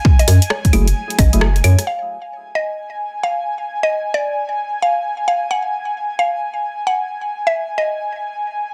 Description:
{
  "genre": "UK garage, two-step garage",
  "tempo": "132 BPM",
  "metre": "4/4",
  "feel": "swing 64% on 16ths",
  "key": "unclear",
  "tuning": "A4 = 440 Hz",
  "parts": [
    { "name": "airy breathy pad", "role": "sustained chords", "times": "0.0-8.7 s", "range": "Ab5", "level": "-26 LUFS", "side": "equal", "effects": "chorus, sidechain pumping" },
    { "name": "electronic kick drum", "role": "drums", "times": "0.0-1.3 s", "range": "none", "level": "-14 LUFS", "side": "equal", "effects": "overdrive, studio reverb" },
    { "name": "mallet-like synth pluck", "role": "melody", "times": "0.2-8.0 s", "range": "Db5 to Gb5", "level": "-23 LUFS", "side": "equal", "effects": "chorus, phaser, delay" },
    { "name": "house drum kit", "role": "drums", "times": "0.2-1.9 s", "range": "claves, hi-hat, rim click", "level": "-22 LUFS", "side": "equal", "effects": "overdrive, studio reverb" },
    { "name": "hollow knocking FM bass", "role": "bass", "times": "0.3-1.8 s", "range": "Gb1 to Gb2", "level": "-15 LUFS", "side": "equal", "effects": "none" },
    { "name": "percussive organ stab", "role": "stabs", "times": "0.7-1.5 s", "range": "Gb3 to Ab4", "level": "-26 LUFS", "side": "equal", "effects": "chorus, delay" }
  ],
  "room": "moderate small room reverb, RT60 0.5 s",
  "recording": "dense, heavily limited modern master",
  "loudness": "-18 LUFS",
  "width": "mono",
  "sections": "0.0-1.9 A section; 1.9-8.7 B section",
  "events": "filter sweep on synth stab 0.0-1.9; band accent 1.4; break 8.2-8.7",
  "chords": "0.0 Gbm9; 1.9 N.C.",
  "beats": "| 0.05 0.51 0.96 1.41 | 1.87 2.32 2.78 3.23 | 3.69 4.14 4.60 5.05 | 5.50 5.96 6.41 6.87 | 7.32 7.78 8.23 8.69"
}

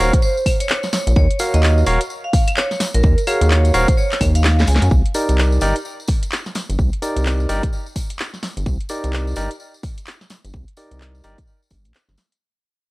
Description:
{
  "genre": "UK garage, two-step garage",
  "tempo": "128 BPM",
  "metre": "4/4",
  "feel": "swing 61% on 16ths",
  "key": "C minor",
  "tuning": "A4 = 440 Hz",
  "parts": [
    { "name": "vibraphone with hard mallets", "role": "melody", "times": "0.0-4.9 s", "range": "Ab4 to Ab5", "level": "-24 LUFS", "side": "right 2 dB", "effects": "analog delay" },
    { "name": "barky tine electric piano", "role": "stabs", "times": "0.0-11.4 s", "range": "Eb4 to F5", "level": "-21 LUFS", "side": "equal", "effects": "overdrive, analog delay" },
    { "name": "rubbery square bass", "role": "bass", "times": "0.0-12.2 s", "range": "Eb1 to Gb2", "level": "-16 LUFS", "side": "equal", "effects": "transformer saturation" },
    { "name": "electronic kick drum", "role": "drums", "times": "0.1-11.8 s", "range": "none", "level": "-18 LUFS", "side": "equal", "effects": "none" },
    { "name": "garage drum kit", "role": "drums", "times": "0.1-12.4 s", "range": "claves, handclaps, hi-hat, snare drum", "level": "-23 LUFS", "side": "equal", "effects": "none" },
    { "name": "tambourine", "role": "percussion", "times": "0.1-12.4 s", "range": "none", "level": "-34 LUFS", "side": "left 3 dB", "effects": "none" }
  ],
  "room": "little or no reverb",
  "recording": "dry, gritty hardware recording, vinyl crackle",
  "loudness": "-15 LUFS",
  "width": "side -21 dB against mid",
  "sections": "0.0-4.9 A section; 4.9-12.4 B section",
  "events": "drop 0.0-4.9; drum fill 4.4-4.9; fade-out 4.9-12.4",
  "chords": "0.0 Ebm7; 4.9 Cm7",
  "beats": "0.23 0.69 | 1.16 1.63 2.10 2.57 | 3.04 3.51 3.98 4.44 | 4.91 5.38 5.85 6.32 | 6.79 7.26 7.72 8.19 | 8.66 9.13 9.60 10.07 | 10.54 11.01 11.47 11.94"
}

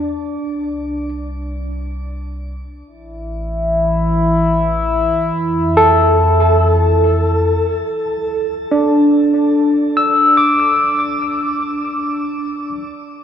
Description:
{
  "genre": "ambient",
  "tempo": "73 BPM",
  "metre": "3/4",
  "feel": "straight",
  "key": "unclear",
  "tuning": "A4 = 439 Hz",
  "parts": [
    { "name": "barky tine electric piano", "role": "arpeggios", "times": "0.0-1.1, 5.8-12.8 s", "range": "D4 to E6", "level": "-14 LUFS", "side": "equal", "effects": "phaser, tape echo, shimmer reverb" },
    { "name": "warm sub bass", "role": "bass", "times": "0.0-7.8 s", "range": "A1 to F2", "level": "-20 LUFS", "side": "equal", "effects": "none" },
    { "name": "analog drone", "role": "drone", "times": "3.2-7.9 s", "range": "E3 to E4", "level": "-18 LUFS", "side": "left 1 dB", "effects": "chorus" }
  ],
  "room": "wet concert hall reverb, RT60 2.2 s",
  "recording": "cassette tape",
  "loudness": "-13 LUFS",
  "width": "side -8 dB against mid",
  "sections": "0.0-7.9 A section; 7.9-13.2 A section",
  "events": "fade-in on sub bass 0.0-7.9",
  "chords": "0.4 N.C.; 2.9 A5; 5.4 Fmaj7; 7.9 Dsus2",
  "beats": "| 0.42 1.24 2.06 | 2.88 3.70 4.53 | 5.35 6.19 7.03 | 7.87 8.71 9.54 | 10.36 11.18 12.00 | 12.82"
}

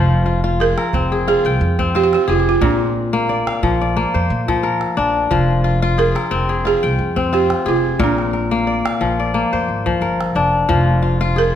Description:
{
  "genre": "west african traditional, West African string and xylophone music",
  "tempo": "89 BPM",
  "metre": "4/4",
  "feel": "swing 54% on 16ths",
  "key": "F dorian",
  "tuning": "A4 = 436 Hz",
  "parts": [
    { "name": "kora", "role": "arpeggios", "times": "0.0-11.6 s", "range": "Bb2 to G5", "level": "-18 LUFS", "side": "left 4 dB", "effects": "none" },
    { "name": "upright bass", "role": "bass", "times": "0.0-11.5 s", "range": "F1 to Bb2", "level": "-20 LUFS", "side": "right 1 dB", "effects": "none" },
    { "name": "balafon", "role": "melody", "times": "0.6-11.6 s", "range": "D4 to Bb4", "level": "-18 LUFS", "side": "right 6 dB", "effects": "none" },
    { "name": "calabash", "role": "percussion", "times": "0.8-10.9 s", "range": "none", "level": "-26 LUFS", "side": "right 3 dB", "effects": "none" }
  ],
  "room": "moderate recital hall reverb, RT60 1.6 s",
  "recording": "none",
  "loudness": "-15 LUFS",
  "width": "side -10 dB against mid",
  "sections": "0.0-11.6 A section",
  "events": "none",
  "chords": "0.0 Fm; 2.6 Bb; 5.3 Fm",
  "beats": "0.60 1.27 1.95 | 2.62 3.29 3.96 4.64 | 5.31 5.98 6.66 7.33 | 8.00 8.68 9.35 10.03 | 10.70 11.37"
}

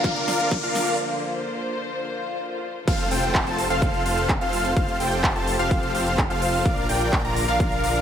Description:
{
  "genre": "EDM, festival progressive house",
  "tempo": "127 BPM",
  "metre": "4/4",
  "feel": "straight",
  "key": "F major",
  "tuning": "A4 = 440 Hz",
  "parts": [
    { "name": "dark studio string section", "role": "sustained chords", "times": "0.0-8.0 s", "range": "C3 to C5", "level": "-30 LUFS", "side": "left 1 dB", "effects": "sidechain pumping" },
    { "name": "wide unison lead", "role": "arpeggios", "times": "0.0-8.0 s", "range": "F5 to Bb5", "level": "-27 LUFS", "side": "equal", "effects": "sidechain pumping, digital delay" },
    { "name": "dense compressed supersaw", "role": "riff", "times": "0.0-8.0 s", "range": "C4 to Bb5", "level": "-26 LUFS", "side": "equal", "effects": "sidechain pumping, digital delay" },
    { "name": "detuned saw bass", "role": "bass", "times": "0.0-8.0 s", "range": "F1 to Bb1", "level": "-30 LUFS", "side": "equal", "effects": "sidechain pumping, high-pass filter" },
    { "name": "big-room dance drum kit", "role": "drums", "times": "0.0-8.0 s", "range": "crash cymbal, handclaps, hi-hat, snare drum", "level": "-29 LUFS", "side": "equal", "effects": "overdrive" },
    { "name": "electronic kick drum", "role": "drums", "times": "0.0-7.7 s", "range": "none", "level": "-25 LUFS", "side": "equal", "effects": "overdrive" },
    { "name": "riser, swell and downlifter", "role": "sound effects", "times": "0.0-6.7 s", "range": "none", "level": "-32 LUFS", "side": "left 3 dB", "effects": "none" }
  ],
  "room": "moderate lush hall reverb, RT60 2.2 s",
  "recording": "high-pass filter",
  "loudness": "-20 LUFS",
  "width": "side -9 dB against mid",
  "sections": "0.0-2.9 A section; 2.9-8.0 B section",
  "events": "build-up 0.0-2.9; drum fill 0.0-1.0; riser 0.0-1.0; filter sweep 0.0-2.9; break 1.0-2.9; swell 2.1-2.9; drop 2.9-8.0",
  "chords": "0.0 Bb; 2.9 F; 6.7 Bb",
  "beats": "0.04 0.51 | 0.99 1.46 1.93 2.40 | 2.88 3.35 3.82 4.29 | 4.77 5.24 5.71 6.18 | 6.66 7.13 7.60"
}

